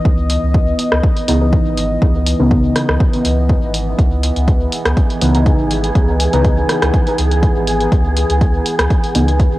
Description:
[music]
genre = dub techno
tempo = 122 BPM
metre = 4/4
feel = swing 53% on 16ths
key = C# minor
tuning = A4 = 440 Hz
[part]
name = deep dark ambient pad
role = sustained chords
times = 0.0-9.6 s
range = E3 to D#5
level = -20 LUFS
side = equal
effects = chorus, built-in reverb, sidechain pumping, cassette tape
[part]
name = deep mellow chord stab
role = stabs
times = 0.0-9.3 s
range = C#3 to D#4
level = -19 LUFS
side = equal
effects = chorus, phaser, sidechain pumping, cassette tape, dub echo
[part]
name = soft dub sub bass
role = bass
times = 0.1-9.6 s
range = G#1 to C#2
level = -17 LUFS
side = equal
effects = sidechain pumping
[part]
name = electronic kick drum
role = drums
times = 0.1-9.5 s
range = none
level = -14 LUFS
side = equal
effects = cassette tape
[part]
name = punchy analog drum machine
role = drums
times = 0.3-9.5 s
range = hi-hat, rim click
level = -21 LUFS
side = equal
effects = cassette tape
[part]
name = wind-like tuned noise texture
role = texture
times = 4.8-9.6 s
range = G#4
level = -24 LUFS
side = right 2 dB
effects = built-in reverb, sidechain pumping, cassette tape
[sound]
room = light reverb, digital ambience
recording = home recording on cassette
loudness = -12 LUFS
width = side -17 dB against mid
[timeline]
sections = 0.0-9.6 A section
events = none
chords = 0.0 C#m9

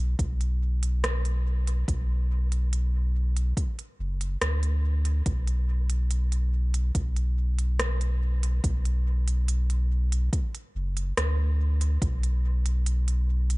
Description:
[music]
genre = ambient dub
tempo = 71 BPM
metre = 4/4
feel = straight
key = B minor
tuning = A4 = 439 Hz
[part]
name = warm sub bass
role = bass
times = 0.0-13.6 s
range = F#1 to D2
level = -24 LUFS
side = equal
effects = none
[part]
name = electronic kick drum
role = drums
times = 0.2-12.2 s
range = none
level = -28 LUFS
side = equal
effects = none
[part]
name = organic electronic drum kit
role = drums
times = 0.2-13.6 s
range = hi-hat, rim click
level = -33 LUFS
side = right 1 dB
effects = none
[sound]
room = little or no reverb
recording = nothing above 10.5 kHz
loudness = -24 LUFS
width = side -23 dB against mid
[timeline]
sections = 0.0-8.6 A section; 8.6-13.6 B section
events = none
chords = none

